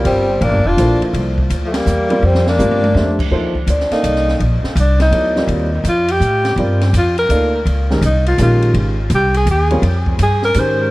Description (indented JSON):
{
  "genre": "modal jazz",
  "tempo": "166 BPM",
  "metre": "3/4",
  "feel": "swing 66% on 8ths",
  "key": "C mixolydian",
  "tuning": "A4 = 439 Hz",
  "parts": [
    { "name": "dark upright piano", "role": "accompaniment", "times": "0.0-10.9 s", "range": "Eb3 to F5", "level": "-21 LUFS", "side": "equal", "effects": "dub echo" },
    { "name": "upright bass", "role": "bass", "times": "0.0-10.9 s", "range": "F1 to A2", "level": "-16 LUFS", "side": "equal", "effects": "none" },
    { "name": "open jazz drum kit", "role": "drums", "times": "0.0-10.7 s", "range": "crash cymbal, hi-hat, kick drum, ride cymbal, snare drum, toms", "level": "-25 LUFS", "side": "equal", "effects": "none" },
    { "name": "warm tenor saxophone", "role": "melody", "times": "0.1-10.9 s", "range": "A3 to C5", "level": "-17 LUFS", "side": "equal", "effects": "dub echo" },
    { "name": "growling tenor saxophone", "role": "second line", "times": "0.1-3.2 s", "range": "F3 to D4", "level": "-22 LUFS", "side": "left 2 dB", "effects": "none" }
  ],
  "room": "light reverb, studio reverb",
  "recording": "echo-heavy mix, vinyl crackle",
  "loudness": "-12 LUFS",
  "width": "side -19 dB against mid",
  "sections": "0.0-3.3 A section; 3.3-10.9 B section",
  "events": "band accent 1.7; drum fill 2.2-3.0; tenor saxophone solo 3.3-10.9",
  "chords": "0.0 C9sus4; 3.3 Ebmaj9; 7.7 Dbmaj9"
}